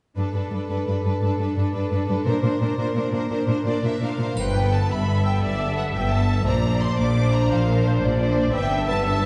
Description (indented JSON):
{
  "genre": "cinematic, heroic adventure film score",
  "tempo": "115 BPM (dotted quarters)",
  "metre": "6/8",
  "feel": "straight",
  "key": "unclear",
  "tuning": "A4 = 440 Hz",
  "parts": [
    { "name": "clear chamber violin section", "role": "melody", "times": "0.2-9.3 s", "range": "B4 to D6", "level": "-33 LUFS", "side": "equal", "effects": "none" },
    { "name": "rich symphonic violin section", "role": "second line", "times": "0.2-9.3 s", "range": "B3 to C5", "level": "-30 LUFS", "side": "equal", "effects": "none" },
    { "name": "rich symphonic viola section", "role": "accompaniment", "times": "0.2-9.3 s", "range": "D4 to E5", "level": "-31 LUFS", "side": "equal", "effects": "none" },
    { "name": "rich symphonic cello section", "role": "bass", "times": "0.2-9.3 s", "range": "G2 to Bb2", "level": "-26 LUFS", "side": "equal", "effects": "none" },
    { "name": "clear chamber double bass section", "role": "bass", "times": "4.4-9.3 s", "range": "G1 to Bb1", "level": "-26 LUFS", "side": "equal", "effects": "none" },
    { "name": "triangle", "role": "percussion", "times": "4.4-5.0 s", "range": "none", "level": "-45 LUFS", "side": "equal", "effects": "none" }
  ],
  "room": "wet scoring stage reverb, RT60 1.8 s",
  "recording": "heard from further back in the room, nothing above 10.9 kHz",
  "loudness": "-22 LUFS",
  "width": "mono",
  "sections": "0.2-4.4 A section; 4.4-9.3 B section",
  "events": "none",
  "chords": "0.2 Gadd9; 2.3 Bbadd9; 4.4 Gadd9; 6.5 Bbadd9; 8.5 Gadd9",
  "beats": "| 0.17 0.70 | 1.22 1.74 | 2.26 2.78 | 3.30 3.83 | 4.37 4.89 | 5.42 5.94 | 6.46 6.98 | 7.50 8.02 | 8.54 9.06"
}